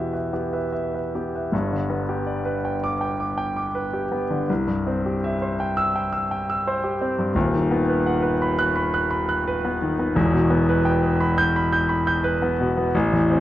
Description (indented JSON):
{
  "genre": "classical, romantic character piece for solo piano",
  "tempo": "73-89 BPM",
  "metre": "4/4",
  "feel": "rubato",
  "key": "E minor",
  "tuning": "A4 = 441 Hz",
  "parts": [
    { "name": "clear concert grand piano", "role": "solo", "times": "0.0-13.4 s", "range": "D#1 to G6", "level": "-20 LUFS", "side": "equal", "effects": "none" }
  ],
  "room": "wet recital hall reverb, RT60 1.4 s",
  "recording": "worn, warbling old tape, cassette tape, warbly pitch drift",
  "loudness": "-20 LUFS",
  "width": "side -13 dB against mid",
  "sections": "0.0-1.5 A section; 1.5-13.4 B section",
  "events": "none",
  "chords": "0.0 Em; 1.5 G; 4.5 C; 7.4 B/D#; 10.2 Em"
}